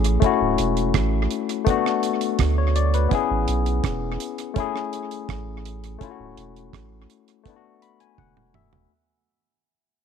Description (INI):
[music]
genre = lovers rock reggae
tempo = 83 BPM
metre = 4/4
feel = straight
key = A major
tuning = A4 = 439 Hz
[part]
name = barky tine electric piano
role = accompaniment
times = 0.0-8.9 s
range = A3 to B5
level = -24 LUFS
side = left 10 dB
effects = overdrive, auto-pan
[part]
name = soft dub sub bass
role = bass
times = 0.0-8.9 s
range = D1 to D2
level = -23 LUFS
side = right 3 dB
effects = none
[part]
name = deep reggae drum kit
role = drums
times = 0.0-8.9 s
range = hi-hat, kick drum, rim click, toms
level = -25 LUFS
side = right 6 dB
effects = tape echo
[sound]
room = light reverb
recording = 1960s-style stereo with parts hard left and right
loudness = -20 LUFS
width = side -7 dB against mid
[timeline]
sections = 0.0-8.9 A section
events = fade-out 0.0-8.9; tine electric piano fill 7.5-8.9; drum fill 8.2-8.9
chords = 0.2 Dmaj9 (rootless); 1.7 D6; 3.1 Amaj7; 6.0 Dmaj9 (rootless); 7.5 E7sus4